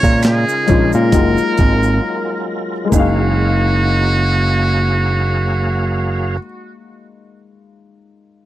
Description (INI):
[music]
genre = R&B, neo-soul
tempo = 67 BPM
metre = 4/4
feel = swing 56% on 16ths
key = F# major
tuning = A4 = 436 Hz
[part]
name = trumpet with metal mute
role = melody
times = 0.0-6.4 s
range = F#4 to C#5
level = -20 LUFS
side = right 1 dB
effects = tape echo
[part]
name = warm upright piano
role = accompaniment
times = 0.0-8.5 s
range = G#3 to E#5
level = -21 LUFS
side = left 6 dB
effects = none
[part]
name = tonewheel organ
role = sustained chords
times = 0.0-6.4 s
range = C#3 to E#5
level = -24 LUFS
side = right 2 dB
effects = slow rotary speaker, overdrive, chorus vibrato
[part]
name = picked electric bass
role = bass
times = 0.0-6.4 s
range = F#1 to A#2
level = -15 LUFS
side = right 1 dB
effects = none
[part]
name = boom bap sampler-style drum kit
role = drums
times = 0.0-3.2 s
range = hi-hat, kick drum, snare drum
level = -15 LUFS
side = right 1 dB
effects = none
[part]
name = egg shaker and finger snaps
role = percussion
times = 0.0-3.3 s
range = none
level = -31 LUFS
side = right 12 dB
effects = none
[sound]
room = little or no reverb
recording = dry, close 1970s-style studio recording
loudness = -13 LUFS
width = side -14 dB against mid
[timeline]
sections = 0.0-2.9 A section; 2.9-6.5 B section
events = break 2.0-2.9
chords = 0.0 A#m7; 1.1 F#maj9